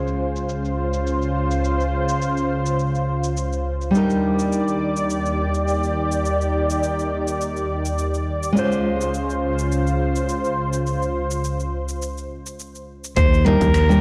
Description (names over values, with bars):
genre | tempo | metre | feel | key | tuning
sunset chillout | 104 BPM | 4/4 | swing 54% on 16ths | unclear | A4 = 440 Hz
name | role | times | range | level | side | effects
nylon-string guitar | accompaniment | 0.0-14.0 s | G3 to C5 | -26 LUFS | equal | digital delay
lush unison pad | sustained chords | 0.0-13.1 s | Db2 to D5 | -24 LUFS | equal | chorus
deep house drum kit | drums | 0.1-14.0 s | congas, finger snaps, hi-hat, shaker | -35 LUFS | equal | overdrive, low-pass filter on perc, low-pass filter on hats, low-pass filter on snare
breathy soprano saxophone | melody | 13.2-14.0 s | Bb4 to C5 | -23 LUFS | equal | none
modern bright fingered electric bass | bass | 13.2-14.0 s | Eb2 | -19 LUFS | equal | tube saturation
electronic kick drum | drums | 13.2-13.7 s | none | -22 LUFS | equal | overdrive
room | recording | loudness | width
wet scoring stage reverb, RT60 1.9 s, digital ambience | worn, warbling old tape, cassette tape, warbly pitch drift | -22 LUFS | mono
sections
0.0-13.2 A section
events
none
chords
0.0 Dbmaj7; 3.9 Ebmaj7; 8.6 Dbmaj7; 13.2 Ebmaj7